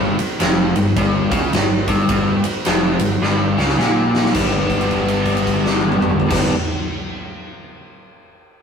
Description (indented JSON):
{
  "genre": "blues rock power trio and southern rock",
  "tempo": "107 BPM",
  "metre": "4/4",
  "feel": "swing 62% on 8ths",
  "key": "G mixolydian",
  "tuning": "A4 = 445 Hz",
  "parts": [
    { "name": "biting overdriven guitar", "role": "riff", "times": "0.0-6.5 s", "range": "F2 to D4", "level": "-18 LUFS", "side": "left 1 dB", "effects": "none" },
    { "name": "overdriven picked electric bass", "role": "bass", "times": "0.0-6.5 s", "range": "F1 to Db2", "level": "-24 LUFS", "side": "equal", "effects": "none" },
    { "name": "huge arena drum kit", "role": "drums", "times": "0.2-6.4 s", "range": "crash cymbal, kick drum, ride cymbal, snare drum, toms", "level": "-19 LUFS", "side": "right 1 dB", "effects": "none" }
  ],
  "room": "moderate stone room reverb, RT60 1.0 s",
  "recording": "rough rehearsal-room recording",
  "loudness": "-15 LUFS",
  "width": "side -6 dB against mid",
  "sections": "0.0-4.3 A section; 4.3-6.6 B section",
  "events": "drum fill 3.2-4.3; held note 4.3-6.2",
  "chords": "0.0 Bbm6/F; 4.3 G",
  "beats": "0.40 0.96 1.53 | 2.09 2.65 3.21 3.78 | 4.34 4.90 5.46 6.02"
}